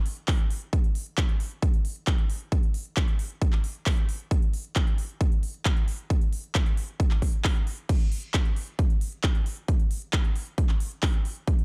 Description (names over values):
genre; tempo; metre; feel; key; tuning
trance; 134 BPM; 4/4; straight; none; none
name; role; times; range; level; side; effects
big-room dance drum kit; drums; 0.1-11.6 s; crash cymbal, handclaps, hi-hat; -36 LUFS; equal; none
electronic kick drum; drums; 0.3-11.6 s; none; -26 LUFS; equal; none
room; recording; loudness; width
little or no reverb; dark, warm production; -27 LUFS; mono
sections
0.0-11.6 A section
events
none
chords
none